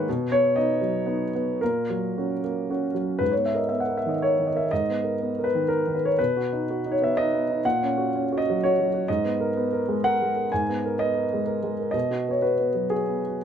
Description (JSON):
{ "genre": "neoclassical minimalist piano", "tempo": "109-128 BPM", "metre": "3/4", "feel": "rubato", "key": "G# minor", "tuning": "A4 = 441 Hz", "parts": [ { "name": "warm grand piano", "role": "solo", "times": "0.0-13.4 s", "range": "G#2 to G#5", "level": "-22 LUFS", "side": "equal", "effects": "none" } ], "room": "light reverb", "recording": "none", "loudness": "-22 LUFS", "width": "side -8 dB against mid", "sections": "0.0-3.2 A section; 3.2-13.4 B section", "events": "none", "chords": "0.1 B; 1.6 F#/A#; 3.2 G#madd9; 6.2 B; 7.6 F#/A#; 9.1 G#madd9; 11.9 B5" }